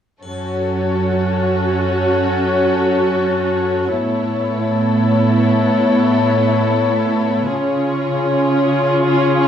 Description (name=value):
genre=cinematic, emotional film score for orchestra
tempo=free time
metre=none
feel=none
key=F# minor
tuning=A4 = 441 Hz
part: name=warm studio violin section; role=second line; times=0.2-9.5 s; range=G#4 to C#5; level=-20 LUFS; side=left 6 dB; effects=none
part: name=dark symphonic viola section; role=accompaniment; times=0.2-9.5 s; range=B3 to F#4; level=-18 LUFS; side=equal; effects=none
part: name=dark studio cello section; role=bass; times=0.2-9.5 s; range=F#2 to C#3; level=-19 LUFS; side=right 3 dB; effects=none
part: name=triangle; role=percussion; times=0.2-2.1 s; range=none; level=-44 LUFS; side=left 2 dB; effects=none
room=moderate scoring stage reverb, RT60 1.5 s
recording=worn, warbling old tape, cassette tape, warbly pitch drift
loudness=-14 LUFS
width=side -9 dB against mid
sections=0.2-9.5 A section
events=none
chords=0.2 F#m; 3.9 Aadd9; 7.5 C#